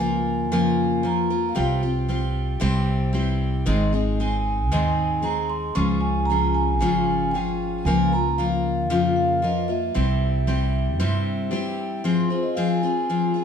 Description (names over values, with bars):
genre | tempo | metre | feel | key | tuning
acoustic folk duo or small band | 114 BPM | 4/4 | straight | F minor | A4 = 441 Hz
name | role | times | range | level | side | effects
vibraphone with soft mallets | melody | 0.0-13.4 s | C5 to Db6 | -26 LUFS | right 3 dB | none
picked steel-string acoustic guitar | accompaniment | 0.0-13.4 s | Ab2 to Bb4 | -23 LUFS | left 3 dB | none
upright bass | bass | 0.0-12.0 s | Ab1 to G2 | -25 LUFS | right 1 dB | none
room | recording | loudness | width
moderate large studio reverb, RT60 1.2 s | dark, warm production | -20 LUFS | side -7 dB against mid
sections
0.0-12.0 A section; 12.0-13.4 B section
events
vibraphone solo 12.0-13.4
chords
0.0 Bbm/Db; 1.6 Csus4; 2.6 C; 3.7 Ab; 5.8 Db; 7.9 Bbm/Db; 10.0 C; 12.0 Fm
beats
0.52 1.04 | 1.57 2.09 2.62 3.14 | 3.67 4.19 4.72 5.24 | 5.76 6.29 6.81 7.34 | 7.86 8.38 8.90 9.43 | 9.95 10.47 11.00 11.52 | 12.04 12.57 13.09